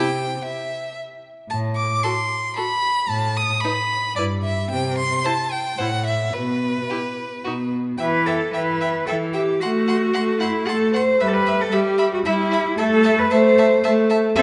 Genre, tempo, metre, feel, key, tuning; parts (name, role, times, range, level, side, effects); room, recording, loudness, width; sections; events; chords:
quick classical-period movement for string quartet; 113 BPM; 3/4; straight; E minor; A4 = 440 Hz
clear violin; melody; 0.0-14.4 s; B4 to D#6; -28 LUFS; equal
clear violin; second line; 0.0-14.4 s; F#4 to F#5; -29 LUFS; equal
rich viola; accompaniment; 0.0-14.4 s; E3 to F#4; -24 LUFS; equal
clear cello; bass; 0.0-14.4 s; G2 to C5; -24 LUFS; equal
moderate concert hall reverb, RT60 2.3 s; nothing above 10.7 kHz; -21 LUFS; mono
0.0-8.0 A section; 8.0-14.4 B section
0.0 C; 1.5 F#dim/A; 3.1 B7/A; 4.2 Em/G; 4.7 C5; 5.8 F#m7/A; 6.3 N.C.; 7.5 B; 8.0 Em; 9.6 F#dim/A; 11.2 Em/G; 12.8 Am